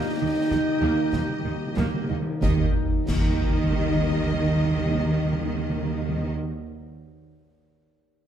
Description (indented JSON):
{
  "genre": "cinematic, heroic adventure film score",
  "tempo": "91 BPM",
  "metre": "4/4",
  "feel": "straight",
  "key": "Eb major",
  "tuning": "A4 = 440 Hz",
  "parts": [
    { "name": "warm symphonic violin section", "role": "melody", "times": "0.0-6.3 s", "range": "Eb5", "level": "-38 LUFS", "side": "left 3 dB", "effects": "none" },
    { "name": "clear oboe", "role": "second line", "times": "0.0-2.1 s", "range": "G5", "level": "-37 LUFS", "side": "right 2 dB", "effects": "none" },
    { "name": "dark clarinet", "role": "second line", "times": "0.0-6.3 s", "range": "Eb4 to Eb5", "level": "-37 LUFS", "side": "right 1 dB", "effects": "none" },
    { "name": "mellow hollow small flute group", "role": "second line", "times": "0.0-6.3 s", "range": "Eb5", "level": "-41 LUFS", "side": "right 1 dB", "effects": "none" },
    { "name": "rich studio violin section", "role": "second line", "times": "0.0-6.3 s", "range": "Eb5", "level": "-42 LUFS", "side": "left 2 dB", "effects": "none" },
    { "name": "warm symphonic viola section", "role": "accompaniment", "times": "0.0-6.3 s", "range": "Bb3 to Bb4", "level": "-35 LUFS", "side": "right 2 dB", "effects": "none" },
    { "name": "dark French horn section", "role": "sustained chords", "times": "0.0-5.7 s", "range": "Eb4", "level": "-29 LUFS", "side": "equal", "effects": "none" },
    { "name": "concert harp", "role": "arpeggios", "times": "0.0-7.0 s", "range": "Eb3 to Bb5", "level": "-37 LUFS", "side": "left 8 dB", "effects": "none" },
    { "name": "timpani", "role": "percussion", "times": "0.0-6.3 s", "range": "Eb3", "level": "-30 LUFS", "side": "left 2 dB", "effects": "none" },
    { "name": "warm symphonic cello section", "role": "bass", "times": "0.2-6.3 s", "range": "Eb3", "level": "-29 LUFS", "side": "right 3 dB", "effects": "none" },
    { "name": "warm symphonic double bass section", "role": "bass", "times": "0.2-6.3 s", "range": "Eb2", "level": "-30 LUFS", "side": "right 5 dB", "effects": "none" },
    { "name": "concert snare drum, concert bass drum and clash cymbals", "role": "drums", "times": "0.5-3.3 s", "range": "none", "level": "-29 LUFS", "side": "equal", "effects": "none" },
    { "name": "concert snare drum, concert bass drum and clash cymbals", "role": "percussion", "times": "2.4-3.7 s", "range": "none", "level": "-30 LUFS", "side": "equal", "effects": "none" }
  ],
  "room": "moderate scoring stage reverb, RT60 1.7 s",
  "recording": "dark, warm production",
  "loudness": "-22 LUFS",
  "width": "side -9 dB against mid",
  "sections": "0.0-2.4 A section; 2.4-7.7 B section",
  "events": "timpani fill 0.0-2.4; slowing down 0.0-2.4; band accent 2.4-3.1",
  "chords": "0.0 Eb",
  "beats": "0.51 1.13 1.76 | 2.42 3.08 3.74 4.40 | 5.06 5.72 6.37"
}